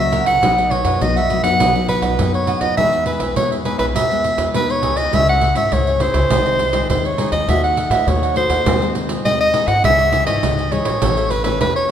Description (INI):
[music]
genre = samba and choro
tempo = 102 BPM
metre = 4/4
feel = straight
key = E major, C# minor from 5.1 s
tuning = A4 = 436 Hz
[part]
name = bright soprano saxophone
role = melody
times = 0.0-11.9 s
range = B4 to F#5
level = -17 LUFS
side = equal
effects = none
[part]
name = cavaquinho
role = accompaniment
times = 0.0-11.9 s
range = D#4 to F#5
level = -25 LUFS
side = right 5 dB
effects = none
[part]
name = nylon-string guitar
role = accompaniment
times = 0.0-11.9 s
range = F#2 to G#4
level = -24 LUFS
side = left 5 dB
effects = none
[part]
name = upright bass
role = bass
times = 0.0-11.9 s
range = G#1 to A2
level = -22 LUFS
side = left 1 dB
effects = none
[part]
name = pandeiro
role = percussion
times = 0.1-11.9 s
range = none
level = -22 LUFS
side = right 4 dB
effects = none
[sound]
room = wet scoring stage reverb, RT60 2.0 s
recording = minimal, uncompressed stereo recording, faint mains hum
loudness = -14 LUFS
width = side -9 dB against mid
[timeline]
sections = 0.0-5.1 A section; 5.1-11.9 B section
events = none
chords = 0.4 B; 2.8 Emaj7; 5.1 C#m; 6.3 G#/B#; 7.5 D#dim; 8.7 G#/D#; 9.8 C#madd9; 11.0 A